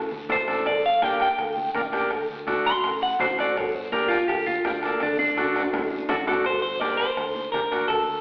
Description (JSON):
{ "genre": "latin, cumbia", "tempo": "166 BPM", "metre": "4/4", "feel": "straight", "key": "G harmonic minor", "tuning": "A4 = 440 Hz", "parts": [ { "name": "fingered electric bass", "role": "bass", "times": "0.0-8.2 s", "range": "G1 to D2", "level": "-42 LUFS", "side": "equal", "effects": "none" }, { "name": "congas", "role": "percussion", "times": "0.1-7.7 s", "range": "none", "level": "-40 LUFS", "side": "equal", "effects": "none" }, { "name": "clean electric guitar", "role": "melody", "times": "0.3-8.2 s", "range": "D4 to C6", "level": "-27 LUFS", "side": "equal", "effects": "spring reverb" }, { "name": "combo organ", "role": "accompaniment", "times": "0.3-7.9 s", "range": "A3 to Bb4", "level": "-30 LUFS", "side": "equal", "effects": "none" }, { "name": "bombo", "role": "percussion", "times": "0.3-8.1 s", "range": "none", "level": "-35 LUFS", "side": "equal", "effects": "none" }, { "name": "cowbell and timbales", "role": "percussion", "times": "0.3-8.1 s", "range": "none", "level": "-35 LUFS", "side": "equal", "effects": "none" }, { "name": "guiro", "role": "percussion", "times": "0.3-8.2 s", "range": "none", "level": "-46 LUFS", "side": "equal", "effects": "none" } ], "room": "wet large studio reverb, RT60 1.2 s", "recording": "band playing live in one room, telephone sound", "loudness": "-24 LUFS", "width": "mono", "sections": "0.0-6.5 A section; 6.5-8.2 B section", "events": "clean electric guitar solo 0.0-6.5; drum fill 5.4-6.5", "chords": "0.0 D7(no3); 0.7 Gm; 2.1 D7; 3.6 Gm; 5.0 D; 6.5 Gm" }